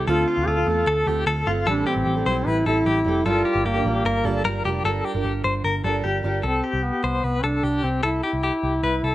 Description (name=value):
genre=indie pop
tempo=151 BPM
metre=4/4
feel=straight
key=C major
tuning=A4 = 436 Hz
part: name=fingerpicked steel-string acoustic guitar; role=accompaniment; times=0.0-6.4 s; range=A2 to Bb4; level=-28 LUFS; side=right 6 dB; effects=none
part: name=direct-recorded clean electric guitar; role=arpeggios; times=0.0-9.1 s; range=F4 to C5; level=-25 LUFS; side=left 3 dB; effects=tremolo
part: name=vintage muted picked electric bass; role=bass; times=0.0-9.1 s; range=F1 to E2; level=-26 LUFS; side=equal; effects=none
part: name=warm duduk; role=melody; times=0.1-9.1 s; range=Bb3 to A4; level=-24 LUFS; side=equal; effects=none
room=moderate large studio reverb, RT60 0.9 s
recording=none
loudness=-20 LUFS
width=side -15 dB against mid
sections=0.0-4.8 A section; 4.8-6.4 B section; 6.4-9.1 C section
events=none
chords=0.1 Dm7; 1.7 Am7; 3.3 Gm7; 6.4 Cmaj7